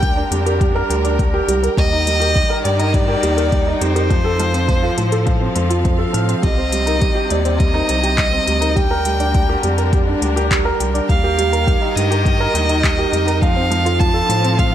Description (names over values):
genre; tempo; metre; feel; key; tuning
piano and strings electronica; 103 BPM; 4/4; straight; G minor; A4 = 440 Hz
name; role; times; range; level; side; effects
rich violin; melody; 0.0-14.7 s; C5 to A5; -21 LUFS; equal; ping-pong delay
rich studio string section; sustained chords; 0.0-14.7 s; C3 to G5; -26 LUFS; left 2 dB; sidechain pumping
soft round pluck; arpeggios; 0.0-14.6 s; F4 to F6; -27 LUFS; left 2 dB; chorus, sidechain pumping, ping-pong delay
felt-muted upright piano; riff; 0.0-14.7 s; F3 to Bb4; -20 LUFS; right 3 dB; ping-pong delay
round analog bass; bass; 0.0-14.7 s; C2 to A2; -20 LUFS; equal; sidechain pumping
electronic kick drum; drums; 0.0-14.7 s; none; -18 LUFS; equal; none
organic electronic drum kit; drums; 0.0-14.7 s; handclaps, hi-hat; -25 LUFS; left 2 dB; none
room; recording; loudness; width
light reverb, digital ambience; none; -14 LUFS; side -11 dB against mid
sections
0.0-14.7 A section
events
none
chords
0.0 Gm/D; 1.8 Eb; 4.1 F; 6.4 Cm7; 8.8 Gm/D; 11.1 Eb; 13.4 F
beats
0.02 0.61 1.19 | 1.77 2.35 2.94 3.52 | 4.10 4.68 5.27 5.85 | 6.43 7.01 7.60 8.18 | 8.76 9.35 9.93 10.51 | 11.09 11.68 12.26 12.84 | 13.42 14.01 14.59